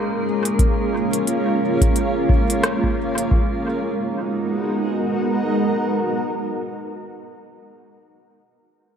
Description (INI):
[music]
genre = ambient dub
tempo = 88 BPM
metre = 4/4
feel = swing 59% on 16ths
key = G# dorian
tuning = A4 = 437 Hz
[part]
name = granular cloud pad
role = sustained chords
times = 0.0-6.7 s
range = G#3 to A#4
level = -21 LUFS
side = right 1 dB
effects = built-in reverb
[part]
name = drifting glass-harmonics texture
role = texture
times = 0.0-3.3 s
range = A#3 to A#4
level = -31 LUFS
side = right 1 dB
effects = chorus, built-in reverb
[part]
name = organic electronic drum kit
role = drums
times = 0.5-3.3 s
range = hi-hat, rim click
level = -25 LUFS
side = equal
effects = dub echo
[part]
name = electronic kick drum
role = drums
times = 0.6-3.5 s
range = none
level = -18 LUFS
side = equal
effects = none
[sound]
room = moderate spring reverb, RT60 2.1 s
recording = none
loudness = -18 LUFS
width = side -8 dB against mid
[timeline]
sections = 0.0-3.3 A section; 3.3-6.0 B section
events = none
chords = 0.0 A#m7; 3.3 G#m9